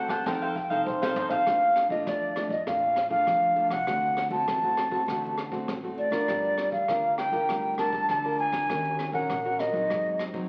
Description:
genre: samba and choro.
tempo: 100 BPM.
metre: 4/4.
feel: straight.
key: Bb major.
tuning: A4 = 438 Hz.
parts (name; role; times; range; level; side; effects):
wooden flute; melody; 0.0-10.2 s; C5 to A5; -28 LUFS; equal; none.
cavaquinho; accompaniment; 0.0-1.5 s; Eb4 to F#5; -35 LUFS; equal; none.
nylon-string guitar; accompaniment; 0.0-10.5 s; Ab2 to Bb4; -35 LUFS; equal; none.
upright bass; bass; 0.1-10.4 s; G1 to F2; -46 LUFS; equal; none.
jazz brush drum kit; drums; 0.1-10.5 s; hi-hat, kick drum, rim click, snare drum, toms; -40 LUFS; equal; none.
room: wet large studio reverb, RT60 1.3 s.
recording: very old 78 rpm record, vinyl crackle.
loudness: -27 LUFS.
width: mono.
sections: 0.0-1.5 A section; 1.5-10.5 B section.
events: flute solo 0.0-1.5; drum fill 0.3-1.5.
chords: 0.3 F7; 1.5 Bbmaj7; 3.9 D7; 6.3 Gm7; 8.7 Ebm7; 9.9 Ab7.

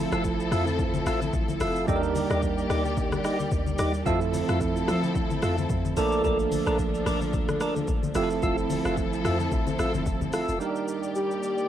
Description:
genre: amapiano.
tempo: 110 BPM.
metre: 4/4.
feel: swing 55% on 16ths.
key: F major.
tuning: A4 = 441 Hz.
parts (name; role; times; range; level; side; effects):
bell-like tine electric piano; accompaniment; 0.0-11.7 s; F3 to Bb4; -30 LUFS; right 8 dB; cassette tape.
warm studio string section; sustained chords; 0.0-11.7 s; Eb2 to D5; -31 LUFS; left 2 dB; sidechain pumping, cassette tape.
deep log drum bass; bass; 0.0-10.6 s; F1 to F3; -30 LUFS; left 1 dB; none.
percussive tonewheel organ; stabs; 0.1-10.6 s; Eb4 to E5; -30 LUFS; left 1 dB; slow rotary speaker, cassette tape, tape echo.
deep house drum kit; drums; 0.1-11.7 s; hi-hat, kick drum, rim click, shaker; -31 LUFS; left 1 dB; cassette tape.
congas; percussion; 0.5-10.3 s; none; -35 LUFS; left 7 dB; none.
soft octave-layered synth lead; melody; 11.2-11.7 s; G4; -27 LUFS; left 2 dB; chorus, cassette tape, tape echo.
room: light reverb.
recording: home recording on cassette.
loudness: -24 LUFS.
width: side -11 dB against mid.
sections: 0.0-10.6 A section; 10.6-11.7 B section.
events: drop 0.0-10.6.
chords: 0.0 Fmaj7; 1.9 Ebmaj7; 4.1 Fmaj7; 6.0 Bbmaj7; 8.2 Fmaj7; 10.6 Ebmaj7.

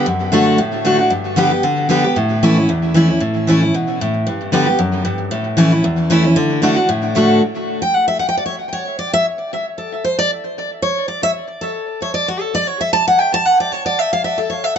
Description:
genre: bluegrass.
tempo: 229 BPM.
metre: 4/4.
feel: swing 55% on 8ths.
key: D major.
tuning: A4 = 440 Hz.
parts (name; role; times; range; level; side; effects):
picked steel-string acoustic guitar; solo; 0.0-14.8 s; E2 to A5; -14 LUFS; equal; tape echo.
room: moderate small room reverb, RT60 0.5 s.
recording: nothing above 7.7 kHz.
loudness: -14 LUFS.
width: side -8 dB against mid.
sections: 0.0-7.4 A section; 7.4-14.8 B section.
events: steel-string acoustic guitar solo 7.4-14.8.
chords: 0.1 D/F#; 1.1 G; 2.2 A; 4.3 G; 5.3 A; 6.4 D; 7.4 N.C..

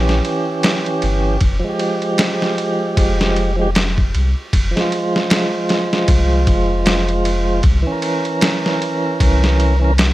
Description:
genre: trip hop.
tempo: 77 BPM.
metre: 4/4.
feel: swing 58% on 16ths.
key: F harmonic minor.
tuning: A4 = 440 Hz.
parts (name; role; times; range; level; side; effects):
tonewheel organ; accompaniment; 0.0-9.9 s; E3 to Bb4; -18 LUFS; right 1 dB; overdrive, stopped rotary speaker, tremolo, tape echo.
soft dub sub bass; bass; 0.0-10.1 s; F1 to C2; -17 LUFS; equal; tube saturation.
trip hop sampler-style drum kit; drums; 0.1-10.1 s; kick drum, ride cymbal, snare drum; -18 LUFS; equal; none.
room: digital ambience.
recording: none.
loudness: -14 LUFS.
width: side -16 dB against mid.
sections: 0.0-10.1 A section.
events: none.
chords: 0.0 C7b9 (rootless); 1.4 Fmadd9; 7.6 C7b9.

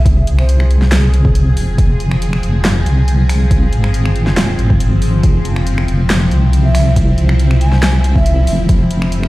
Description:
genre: deep dubstep.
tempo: 139 BPM.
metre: 4/4.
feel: half-time.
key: F harmonic minor.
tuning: A4 = 439 Hz.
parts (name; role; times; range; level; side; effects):
breathy mellow shakuhachi; melody; 0.0-1.4, 6.6-8.6 s; Ab4 to Ab5; -25 LUFS; right 1 dB; dub echo.
bowed-like drone; sustained chords; 0.0-9.3 s; F3 to Ab4; -20 LUFS; left 1 dB; built-in reverb, phaser.
deep soft wobble bass; bass; 0.0-9.3 s; F1 to C2; -12 LUFS; equal; chorus.
deep house drum kit; drums; 0.1-9.3 s; finger snaps, handclaps, hi-hat, snare drum; -20 LUFS; equal; none.
electronic kick drum; drums; 0.1-8.8 s; none; -14 LUFS; equal; none.
room: digital ambience.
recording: played on a big sound system in a bare room, stone room reverb, vinyl crackle.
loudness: -10 LUFS.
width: side -18 dB against mid.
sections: 0.0-9.3 A section.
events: none.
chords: 0.0 Fm.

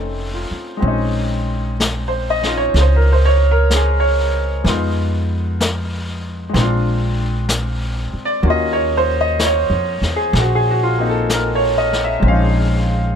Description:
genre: jazz ballad.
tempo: 63 BPM.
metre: 4/4.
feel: swing 68% on 8ths.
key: Bb minor.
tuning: A4 = 441 Hz.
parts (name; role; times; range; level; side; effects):
clear concert grand piano; accompaniment; 0.0-13.2 s; Ab3 to F5; -18 LUFS; equal; none.
upright bass; bass; 0.0-13.1 s; F1 to F2; -18 LUFS; equal; none.
vintage brush drum kit; drums; 0.8-13.2 s; brushed snare drum, hi-hat, snare drum; -25 LUFS; left 2 dB; none.
room: little or no reverb.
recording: close, detailed microphones.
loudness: -15 LUFS.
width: side -8 dB against mid.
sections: 0.8-13.2 A section.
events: none.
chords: 0.0 F7b13; 0.8 Bbm11; 4.6 Fm7b5; 6.5 Bb7; 8.4 Ebm9; 12.2 Bbm11.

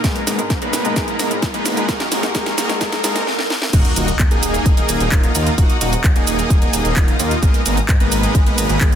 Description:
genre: EDM, festival progressive house.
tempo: 130 BPM.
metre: 4/4.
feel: straight.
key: Eb minor.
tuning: A4 = 437 Hz.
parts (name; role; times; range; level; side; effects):
clear baby grand piano; accompaniment; 0.0-3.2 s; Ab2 to Bb4; -26 LUFS; left 2 dB; sidechain pumping, ping-pong delay.
dark studio string section; sustained chords; 0.0-9.0 s; Ab4 to Eb6; -29 LUFS; left 3 dB; sidechain pumping.
dense compressed supersaw; riff; 0.0-9.0 s; Ab3 to Cb5; -21 LUFS; right 1 dB; sidechain pumping, low-pass filter, ping-pong delay.
wide detuned saw bass; bass; 0.0-9.0 s; Eb1 to Ab2; -23 LUFS; equal; chorus, sidechain pumping, high-pass filter.
electronic kick drum; drums; 0.0-8.9 s; none; -15 LUFS; equal; none.
house drum kit; drums; 0.0-9.0 s; crash cymbal, handclaps, hi-hat, shaker, snare drum; -22 LUFS; right 1 dB; none.
riser and impact; sound effects; 0.0-5.6 s; none; -28 LUFS; equal; none.
room: light reverb, digital ambience.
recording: dense, heavily limited modern master, high-pass filter.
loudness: -14 LUFS.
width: side -9 dB against mid.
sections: 0.0-3.7 A section; 3.7-9.0 B section.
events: build-up 0.0-3.7; drum fill 0.0-3.3, 3.3-3.7; riser 0.0-3.3; drop 3.7-9.0; impact 3.7-5.6.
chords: 0.0 Abmadd9; 1.9 Gbadd9; 3.7 Ebm; 7.4 Abmadd9.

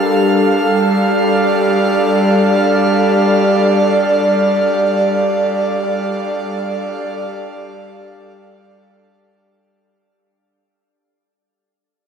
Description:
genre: ambient.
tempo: free time.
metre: none.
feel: none.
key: unclear.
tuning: A4 = 441 Hz.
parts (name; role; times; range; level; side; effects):
airy breathy pad; sustained chords; 0.0-9.7 s; G3 to F5; -14 LUFS; right 1 dB; chorus.
bowed-like drone; drone; 0.0-9.8 s; G3 to D4; -21 LUFS; left 2 dB; built-in reverb.
drifting glass-harmonics texture; texture; 0.0-9.7 s; F5 to F6; -26 LUFS; right 2 dB; chorus, built-in reverb.
room: wet huge ambient reverb, RT60 7.7 s.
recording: none.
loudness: -12 LUFS.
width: side -7 dB against mid.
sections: 0.0-9.7 A section.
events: fade-out on synth texture 0.0-9.7; fade-out 3.4-9.7.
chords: 0.3 Dm/G.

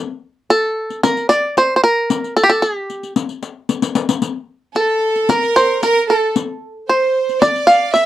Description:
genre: Arabic maqam ensemble.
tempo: 113 BPM.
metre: 4/4.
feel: straight.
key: A maqam kurd.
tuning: A4 = 440 Hz.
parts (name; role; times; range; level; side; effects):
bluegrass banjo; melody; 0.5-8.1 s; G4 to F5; -14 LUFS; right 1 dB; none.
riq; percussion; 0.5-8.1 s; none; -20 LUFS; left 7 dB; none.
bright chamber violin section; second line; 4.8-8.1 s; A4 to E5; -17 LUFS; right 2 dB; none.
room: light reverb.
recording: dry, close 1970s-style studio recording.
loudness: -14 LUFS.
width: side -13 dB against mid.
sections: 0.0-8.1 A section.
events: drum fill 3.7-4.2.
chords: none.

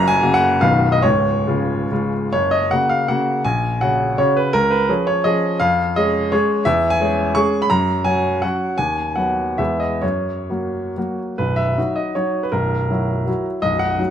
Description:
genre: classical, romantic triple-time dance for piano with dotted rhythms.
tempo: 120-180 BPM.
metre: 3/4.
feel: rubato.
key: F# major, B major from 6.7 s.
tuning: A4 = 443 Hz.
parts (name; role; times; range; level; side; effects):
clear baby grand piano; solo; 0.0-14.1 s; B0 to C#6; -16 LUFS; equal; none.
room: light reverb.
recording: close, detailed microphones.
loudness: -16 LUFS.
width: side -9 dB against mid.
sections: 0.0-2.3 A section; 2.3-11.4 A section; 11.4-14.1 B section.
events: none.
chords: 0.0 F#; 0.6 B; 1.0 C#; 2.3 F#; 3.4 F#/A#; 4.5 C#; 5.6 C#/E#; 6.7 C#m/E; 7.7 F#; 8.8 B/D#; 9.6 E; 10.0 F#; 11.4 B; 12.5 F#7/B.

